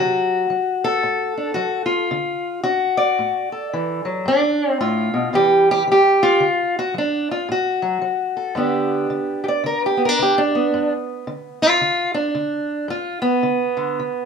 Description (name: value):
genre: acoustic country blues, solo or duo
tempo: 111 BPM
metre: 4/4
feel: swing 61% on 8ths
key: G major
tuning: A4 = 440 Hz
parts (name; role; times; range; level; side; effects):
- fingerpicked steel-string acoustic guitar; solo; 0.0-14.3 s; G2 to D5; -17 LUFS; equal; none
room: moderate studio reverb, RT60 0.8 s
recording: minimal, uncompressed stereo recording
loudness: -17 LUFS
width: side -6 dB against mid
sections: 0.0-8.6 A section; 8.6-14.3 B section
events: steel-string acoustic guitar solo 8.6-14.3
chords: 0.0 D; 4.3 G; 5.3 C; 6.4 D; 8.6 G